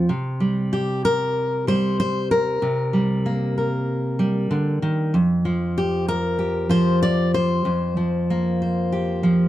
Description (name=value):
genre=folk, solo fingerstyle acoustic guitar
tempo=95 BPM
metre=4/4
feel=straight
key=unclear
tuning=A4 = 440 Hz
part: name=fingerpicked steel-string acoustic guitar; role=solo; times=0.0-9.5 s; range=F2 to D5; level=-19 LUFS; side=equal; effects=none
room=light reverb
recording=dark, warm production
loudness=-19 LUFS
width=side -14 dB against mid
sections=0.1-9.5 A section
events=none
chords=0.1 C7(no3); 5.1 Fsus2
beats=| 0.09 0.72 1.36 1.99 | 2.62 3.25 3.88 4.51 | 5.14 5.76 6.39 7.01 | 7.65 8.28 8.92